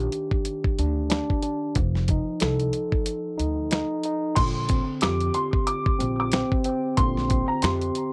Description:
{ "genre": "hip hop, boom-bap hip-hop", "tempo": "92 BPM", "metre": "4/4", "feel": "swing 58% on 16ths", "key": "Bb major", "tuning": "A4 = 438 Hz", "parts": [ { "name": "mellow tine electric piano", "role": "accompaniment", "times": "0.0-8.1 s", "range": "D3 to A4", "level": "-29 LUFS", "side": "equal", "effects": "high-pass filter, low-pass filter, cassette tape" }, { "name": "upright bass", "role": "bass", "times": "0.0-7.9 s", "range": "F1 to F2", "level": "-30 LUFS", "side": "equal", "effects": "none" }, { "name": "dusty soul sampler-style drum kit", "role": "drums", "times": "0.1-8.1 s", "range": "crash cymbal, hi-hat, kick drum, snare drum", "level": "-27 LUFS", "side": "equal", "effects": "none" }, { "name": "dark upright piano", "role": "melody", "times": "4.4-8.1 s", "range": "Bb5 to D6", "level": "-31 LUFS", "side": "equal", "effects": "high-pass filter, low-pass filter, tape echo" } ], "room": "little or no reverb", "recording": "home recording on cassette", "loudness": "-25 LUFS", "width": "mono", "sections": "0.0-4.4 A section; 4.4-8.1 B section", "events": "break 3.1-4.4", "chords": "0.0 Ebmaj7; 1.8 F7; 4.4 Bb69" }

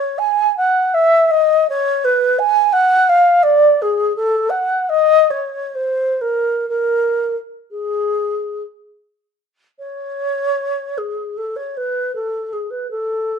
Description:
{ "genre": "classical, free, expressive piece for unaccompanied alto flute", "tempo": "43-86 BPM", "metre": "3/4", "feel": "rubato", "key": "C# minor", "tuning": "A4 = 440 Hz", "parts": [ { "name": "wooden-headed alto flute", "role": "solo", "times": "0.0-13.4 s", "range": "G#4 to G#5", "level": "-15 LUFS", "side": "equal", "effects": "none" } ], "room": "light reverb", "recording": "dark, warm production", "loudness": "-14 LUFS", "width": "side -6 dB against mid", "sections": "0.0-9.8 A section; 9.8-13.4 B section", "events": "none", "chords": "none" }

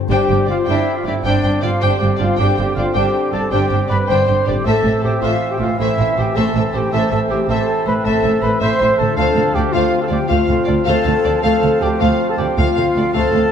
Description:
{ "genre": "cinematic", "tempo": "106 BPM (dotted quarters)", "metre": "12/8", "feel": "straight", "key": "unclear", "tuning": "A4 = 440 Hz", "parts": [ { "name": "concert harp", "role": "arpeggios", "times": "0.0-13.0 s", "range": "G2 to C5", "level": "-29 LUFS", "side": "left 8 dB", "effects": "none" }, { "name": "warm symphonic violin section", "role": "melody", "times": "0.1-13.4 s", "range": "C5 to G5", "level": "-25 LUFS", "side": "left 5 dB", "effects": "none" }, { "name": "dark cor anglais", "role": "second line", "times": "0.1-13.5 s", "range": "D5 to F5", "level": "-28 LUFS", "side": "right 2 dB", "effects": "none" }, { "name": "silver concert flute", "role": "second line", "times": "0.1-13.5 s", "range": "D5 to C6", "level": "-26 LUFS", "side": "left 1 dB", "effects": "none" }, { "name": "warm clarinet", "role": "second line", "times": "0.1-13.5 s", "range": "C5", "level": "-28 LUFS", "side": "left 1 dB", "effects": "none" }, { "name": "warm symphonic violin section", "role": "second line", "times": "0.1-13.4 s", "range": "G4 to C5", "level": "-28 LUFS", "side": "left 5 dB", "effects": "none" }, { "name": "warm studio viola section", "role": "accompaniment", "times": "0.1-13.4 s", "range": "A3 to D4", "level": "-25 LUFS", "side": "equal", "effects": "none" }, { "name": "clear trombone section", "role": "sustained chords", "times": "0.1-13.5 s", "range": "D3 to C4", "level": "-27 LUFS", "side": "right 4 dB", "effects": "none" }, { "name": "mellow French horn section", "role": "sustained chords", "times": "0.1-13.5 s", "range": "D4 to C5", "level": "-20 LUFS", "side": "left 2 dB", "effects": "none" }, { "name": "mellow trumpet", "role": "stabs", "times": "0.1-13.5 s", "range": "D4 to C5", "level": "-24 LUFS", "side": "right 2 dB", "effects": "none" }, { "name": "warm symphonic cello section", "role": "bass", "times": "0.1-13.4 s", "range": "D2 to A2", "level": "-22 LUFS", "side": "right 3 dB", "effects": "none" }, { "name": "warm symphonic double bass section", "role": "bass", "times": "0.1-13.4 s", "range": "G1 to D2", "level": "-22 LUFS", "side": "right 4 dB", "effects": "none" } ], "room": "wet scoring stage reverb, RT60 1.9 s", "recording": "none", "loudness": "-14 LUFS", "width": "side -8 dB against mid", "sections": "0.1-13.5 A section", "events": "none", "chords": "0.1 Gsus4; 4.7 Am; 9.2 Dm7" }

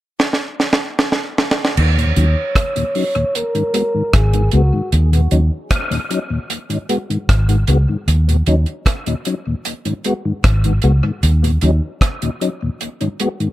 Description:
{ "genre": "dub reggae", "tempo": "76 BPM", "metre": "4/4", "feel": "straight", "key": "Eb minor", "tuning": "A4 = 440 Hz", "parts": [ { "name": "deep reggae drum kit", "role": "drums", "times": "0.2-13.5 s", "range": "crash cymbal, hi-hat, kick drum, rim click, snare drum", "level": "-18 LUFS", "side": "right 1 dB", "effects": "none" }, { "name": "breathy flugelhorn", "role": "melody", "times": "1.8-4.9 s", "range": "Gb4 to Db5", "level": "-22 LUFS", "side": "equal", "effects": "low-pass filter, tape echo" }, { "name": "vintage muted fingered electric bass", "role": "bass", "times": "1.8-11.8 s", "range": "Ab1 to Eb2", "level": "-13 LUFS", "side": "equal", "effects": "none" }, { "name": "mellow tonewheel organ", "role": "accompaniment", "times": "2.0-13.5 s", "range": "Eb2 to Gb4", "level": "-21 LUFS", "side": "left 2 dB", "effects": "chorus vibrato, slow rotary speaker, low-pass filter, tape echo" } ], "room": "light reverb, small room reverb", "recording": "none", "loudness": "-15 LUFS", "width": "side -15 dB against mid", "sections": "0.0-1.8 A section; 1.8-13.5 B section", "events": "drum fill 0.2-1.8; filter sweep 1.8-13.5", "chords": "0.0 N.C.; 1.8 Ebm7; 3.3 Abm7; 4.9 Ebm7; 6.5 Abm7; 8.1 Ebm7; 9.6 Abm7; 11.2 Ebm7; 12.8 Abm7" }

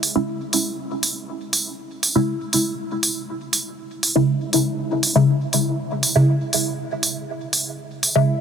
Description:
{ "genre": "dub techno", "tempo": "120 BPM", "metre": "4/4", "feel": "straight", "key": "C# minor", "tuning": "A4 = 440 Hz", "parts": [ { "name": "electronic hi-hat", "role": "drums", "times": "0.0-8.1 s", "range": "none", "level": "-19 LUFS", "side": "right 2 dB", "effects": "none" }, { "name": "filtered dub chord stab", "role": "stabs", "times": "0.2-8.3 s", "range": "C#3 to E4", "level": "-21 LUFS", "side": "equal", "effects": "phaser, dub echo" } ], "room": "wet huge ambient reverb, RT60 6.9 s", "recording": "dense, heavily limited modern master", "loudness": "-19 LUFS", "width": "side -7 dB against mid", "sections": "0.0-8.4 A section", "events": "filter sweep on synth stab 0.0-8.4", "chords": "0.0 C#m" }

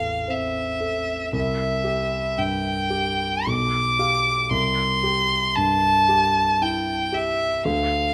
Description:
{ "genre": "classical, romantic duo for violin and grand piano", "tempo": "58 BPM", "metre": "3/4", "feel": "rubato", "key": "unclear", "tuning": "A4 = 439 Hz", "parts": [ { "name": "rich violin", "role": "melody", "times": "0.0-8.1 s", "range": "E5 to D6", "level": "-23 LUFS", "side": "equal", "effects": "none" }, { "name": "dark concert grand piano", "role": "accompaniment", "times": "0.0-8.1 s", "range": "A1 to F5", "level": "-28 LUFS", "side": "equal", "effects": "none" } ], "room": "light reverb", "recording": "close, detailed microphones", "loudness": "-22 LUFS", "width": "mono", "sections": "0.0-8.1 A section", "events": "none", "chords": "0.0 Am; 1.3 C; 3.5 G7/B; 4.5 C" }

